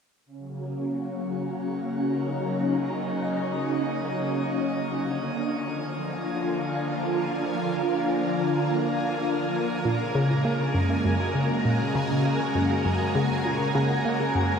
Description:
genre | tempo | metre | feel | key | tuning
ambient | 100 BPM | 4/4 | straight | Eb minor | A4 = 440 Hz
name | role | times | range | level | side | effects
phased string machine | sustained chords | 0.3-14.6 s | Db3 to Bb4 | -25 LUFS | equal | ensemble chorus, phaser
bubbling stepped-filter texture | texture | 0.8-14.6 s | Ab5 | -36 LUFS | right 3 dB | chorus, built-in reverb
analog pluck | riff | 9.8-14.6 s | Gb2 to Bb3 | -26 LUFS | left 1 dB | chorus, tape echo
room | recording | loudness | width
wet shimmer reverb, RT60 7.5 s | none | -24 LUFS | side -6 dB against mid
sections
0.3-14.6 A section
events
fade-in on synth texture 0.3-14.6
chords
0.3 Ebm7; 5.1 Bb; 9.9 Gbadd9

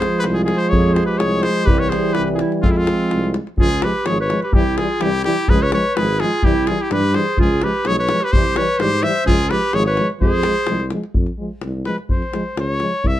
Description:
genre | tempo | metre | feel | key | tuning
balkan folk, Balkan brass band | 127 BPM | 2/4 | swing 54% on 16ths | F hungarian minor | A4 = 440 Hz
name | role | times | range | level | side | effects
brilliant trumpet | melody | 0.0-13.2 s | E4 to E5 | -21 LUFS | left 2 dB | none
warm clarinet | second line | 0.0-10.9 s | C4 to C5 | -23 LUFS | right 4 dB | none
mellow euphonium | accompaniment | 0.0-12.9 s | E3 to F3 | -25 LUFS | right 3 dB | none
warm French horn | accompaniment | 0.0-12.9 s | G3 to Ab3 | -25 LUFS | left 3 dB | none
warm tuba | bass | 0.0-13.2 s | Ab1 to Ab2 | -22 LUFS | equal | none
davul | percussion | 0.0-13.2 s | none | -20 LUFS | left 1 dB | none
room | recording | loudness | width
light reverb | dark, warm production | -15 LUFS | side -13 dB against mid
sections
0.0-3.6 A section; 3.6-11.2 B section; 11.2-13.2 C section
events
trumpet solo 11.2-13.2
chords
0.0 Fm; 1.7 C; 2.6 Fm; 3.6 Db; 4.5 C; 5.5 Db; 6.4 C; 7.4 Db; 8.3 C; 9.3 Db; 10.2 Fm

